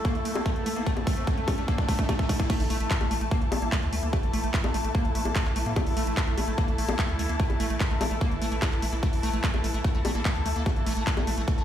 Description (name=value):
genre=psychedelic trance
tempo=147 BPM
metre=4/4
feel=straight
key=unclear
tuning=A4 = 442 Hz
part: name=overtone-sweeping drone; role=sustained chords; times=0.0-11.6 s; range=E3 to A4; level=-35 LUFS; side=right 2 dB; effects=chorus, built-in reverb, sidechain pumping
part: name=liquid acid bass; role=riff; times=0.0-11.6 s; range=A3 to Bb3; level=-33 LUFS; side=equal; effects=chorus, auto-pan, sidechain pumping, digital delay
part: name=big-room dance drum kit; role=drums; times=0.0-11.6 s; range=bongos, crash cymbal, handclaps, hi-hat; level=-33 LUFS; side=left 2 dB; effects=overdrive
part: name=electronic kick drum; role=drums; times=0.0-11.6 s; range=none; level=-26 LUFS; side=equal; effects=overdrive
part: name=riser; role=sound effects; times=0.0-2.5 s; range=none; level=-36 LUFS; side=right 1 dB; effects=none
part: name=dark symphonic string section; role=texture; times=0.0-11.6 s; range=E4 to A5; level=-34 LUFS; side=left 4 dB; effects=sidechain pumping
part: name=round analog bass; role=bass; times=2.6-11.6 s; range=G1 to A2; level=-29 LUFS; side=equal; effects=none
room=light reverb, digital ambience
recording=played on a big sound system in a bare room, stone room reverb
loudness=-24 LUFS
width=side -10 dB against mid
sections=0.0-2.5 A section; 2.5-11.6 B section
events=build-up 0.0-2.5; drum fill 0.0-2.5; riser 0.0-2.5; drop 2.5-11.6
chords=0.0 A5